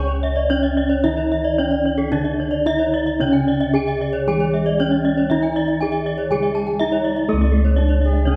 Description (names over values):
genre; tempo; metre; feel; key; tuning
Balinese gamelan; 111-124 BPM; 4/4; straight; C# pelog; A4 = 440 Hz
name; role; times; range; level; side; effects
gamelan-type bronze metallophone; melody; 0.0-8.4 s; A3-40c to C#5; -23 LUFS; equal; none
gamelan-type bronze metallophone; accompaniment; 0.0-8.4 s; C#3 to C#4; -31 LUFS; equal; none
gamelan-type bronze metallophone; arpeggios; 0.0-8.4 s; A4-40c to A5-40c; -27 LUFS; equal; none
gamelan-type bossed gongs; bass; 0.0-8.4 s; C#2 to A4-40c; -24 LUFS; equal; none
gamelan-type bronze metallophone; arpeggios; 0.1-8.3 s; A4-40c to G#5-45c; -29 LUFS; equal; none
reedy alto recorder; second line; 8.0-8.4 s; G#4-40c to A4-34c; -30 LUFS; equal; none
room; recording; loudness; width
wet recital hall reverb, RT60 1.8 s; recorded in a church or concert hall; -19 LUFS; mono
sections
0.0-7.3 A section; 7.3-8.4 B section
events
none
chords
none